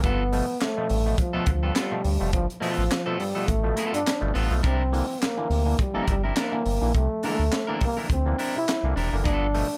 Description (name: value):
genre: funk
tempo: 104 BPM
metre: 4/4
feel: swing 56% on 16ths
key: unclear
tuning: A4 = 440 Hz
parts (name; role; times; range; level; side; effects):
- breathy trombone; melody; 0.0-9.8 s; F3 to E4; -30 LUFS; equal; none
- electric guitar at the edge of break-up; accompaniment; 0.0-9.5 s; B3 to Bb4; -34 LUFS; equal; none
- overdriven clav; stabs; 0.0-9.8 s; G2 to Bb3; -34 LUFS; equal; phaser
- round analog bass; bass; 0.0-9.6 s; E1 to D2; -27 LUFS; equal; none
- crisp fusion drum kit; drums; 0.0-9.7 s; handclaps, hi-hat, kick drum, snare drum; -31 LUFS; equal; none
room: light reverb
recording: none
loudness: -25 LUFS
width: mono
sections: 0.0-9.8 A section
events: none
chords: 0.0 G9; 4.6 C9; 9.2 G9